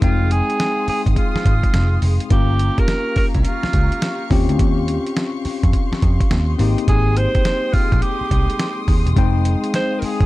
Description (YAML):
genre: R&B, new jack swing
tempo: 105 BPM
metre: 4/4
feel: swing 65% on 16ths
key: F minor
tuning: A4 = 440 Hz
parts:
  - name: bright alto saxophone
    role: melody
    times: 0.0-10.3 s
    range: F4 to C5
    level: -23 LUFS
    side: right 2 dB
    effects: none
  - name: bell-like tine electric piano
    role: accompaniment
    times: 0.0-10.3 s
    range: Ab3 to G5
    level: -24 LUFS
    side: left 5 dB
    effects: auto-pan
  - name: warm studio string section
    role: sustained chords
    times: 0.0-10.3 s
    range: Ab3 to Eb6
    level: -30 LUFS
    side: left 1 dB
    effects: none
  - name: vintage muted picked electric bass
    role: bass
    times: 0.0-10.3 s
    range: E1 to F2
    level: -18 LUFS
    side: equal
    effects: none
  - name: dusty soul sampler-style drum kit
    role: drums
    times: 0.0-10.3 s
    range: hi-hat, kick drum, snare drum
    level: -19 LUFS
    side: equal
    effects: none
room: little or no reverb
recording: dark, warm production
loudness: -15 LUFS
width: side -17 dB against mid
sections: 0.0-10.3 A section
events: none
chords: 0.0 Fm7; 2.3 Gm7b5; 4.3 Eb13; 6.6 Abmaj7; 9.2 Fm7